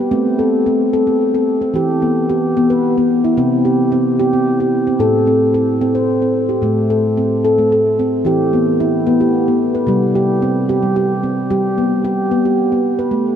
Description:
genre	world meditative, meditative tuned percussion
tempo	74 BPM (dotted quarters)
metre	6/8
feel	straight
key	A minor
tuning	A4 = 436 Hz
part	handpan	solo	0.0-13.4 s	A2 to C5	-13 LUFS	equal	diffuse ambient delay
room	wet huge ambient reverb, RT60 7.3 s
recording	in a vast, echoing space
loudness	-13 LUFS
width	side -8 dB against mid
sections	0.0-6.6 A section; 6.6-13.4 B section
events	none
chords	0.1 Am; 1.7 Em; 3.4 C5; 5.0 Am; 8.3 Em; 9.9 C5; 11.5 G

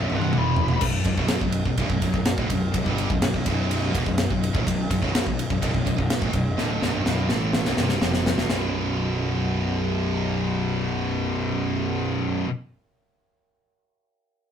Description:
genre	heavy metal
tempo	125 BPM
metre	4/4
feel	straight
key	B phrygian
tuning	A4 = 438 Hz
part	bluesy overdriven lead guitar	melody	0.0-0.8 s	E5 to B5	-29 LUFS	left 7 dB	distortion
part	high-gain distorted guitar	riff	0.0-12.5 s	B1 to A3	-29 LUFS	right 8 dB	distortion
part	scooped high-gain guitar	riff	0.0-12.5 s	B1 to A3	-28 LUFS	left 6 dB	distortion
part	fuzz fingered electric bass	bass	0.0-12.4 s	B0 to A1	-27 LUFS	equal	overdrive
part	modern studio drum kit	drums	0.1-8.6 s	crash cymbal, kick drum, ride cymbal, snare drum, toms	-24 LUFS	equal	none
room	light reverb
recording	rough rehearsal-room recording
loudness	-21 LUFS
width	side -8 dB against mid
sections	0.8-8.5 A section; 8.5-12.3 B section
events	drum fill 0.0-0.8, 6.6-8.5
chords	0.0 B5; 0.8 Bm; 8.5 B5

